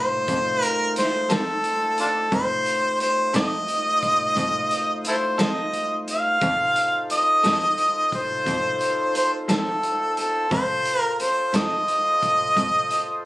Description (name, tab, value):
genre	slow blues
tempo	59 BPM (dotted quarters)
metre	12/8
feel	straight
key	F mixolydian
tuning	A4 = 440 Hz
part	bright harmonica	melody	0.0-13.3 s	D4 to F5	-20 LUFS	equal	overdrive
part	tonewheel organ	sustained chords	0.0-13.3 s	A3 to C5	-32 LUFS	equal	slow rotary speaker
part	rich cello	bass	0.3-12.6 s	F2 to F3	-27 LUFS	equal	none
part	vintage drum kit	drums	0.3-13.1 s	hi-hat, kick drum, snare drum	-30 LUFS	equal	none
part	clean electric guitar	accompaniment	1.3-11.8 s	F3 to A4	-29 LUFS	left 2 dB	harmonic tremolo
room	light reverb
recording	recorded on a phone in the room, studio ambience, compression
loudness	-20 LUFS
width	side -18 dB against mid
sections	0.0-13.3 A section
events	none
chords	0.0 F7